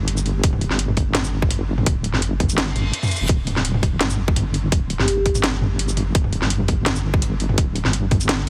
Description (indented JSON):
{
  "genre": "half-time drum and bass",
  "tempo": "168 BPM",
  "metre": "4/4",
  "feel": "half-time",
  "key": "unclear",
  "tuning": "A4 = 444 Hz",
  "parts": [
    { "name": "deep soft wobble bass", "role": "bass", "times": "0.0-8.5 s", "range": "D1 to G1", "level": "-25 LUFS", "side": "equal", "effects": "chorus" },
    { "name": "drum and bass drum kit", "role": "drums", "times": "0.1-8.4 s", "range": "hi-hat, shaker, snare drum, toms", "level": "-24 LUFS", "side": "equal", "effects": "none" },
    { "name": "electronic kick drum", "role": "drums", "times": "0.4-8.2 s", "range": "none", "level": "-22 LUFS", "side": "equal", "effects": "none" },
    { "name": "reverse cymbal", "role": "sound effects", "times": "2.7-3.3 s", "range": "none", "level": "-33 LUFS", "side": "equal", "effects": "none" },
    { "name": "vibraphone with soft mallets", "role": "melody", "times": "5.0-5.3 s", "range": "G4", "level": "-31 LUFS", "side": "equal", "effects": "vintage 12-bit sampler grit, digital delay" }
  ],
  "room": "little or no reverb",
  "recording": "heavily compressed radio sound, multiband compression",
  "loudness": "-20 LUFS",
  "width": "mono",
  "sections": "0.0-8.5 A section",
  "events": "reverse cymbal 2.7-3.3",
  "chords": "none",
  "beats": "0.08 | 0.43 0.79 1.15 1.51 | 1.86 2.22 2.58 2.94 | 3.29 3.65 4.01 4.36 | 4.72 5.08 5.43 5.79 | 6.15 6.51 6.86 7.22 | 7.58 7.93 8.29"
}